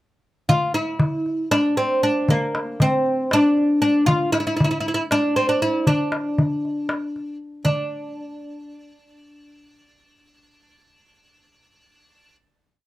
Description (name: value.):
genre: Turkish makam ensemble.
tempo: 235 BPM (eighths).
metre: 7/8.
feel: straight.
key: D makam ussak.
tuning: A4 = 440 Hz.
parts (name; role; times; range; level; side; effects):
oud; melody; 0.5-12.4 s; Bb3 to F4; -20 LUFS; equal; none.
darbuka; percussion; 0.5-7.9 s; none; -21 LUFS; left 1 dB; none.
room: moderate studio ambience, RT60 0.5 s.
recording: none.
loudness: -18 LUFS.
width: side -16 dB against mid.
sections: 0.5-7.7 A section; 7.7-11.2 final note.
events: none.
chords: none.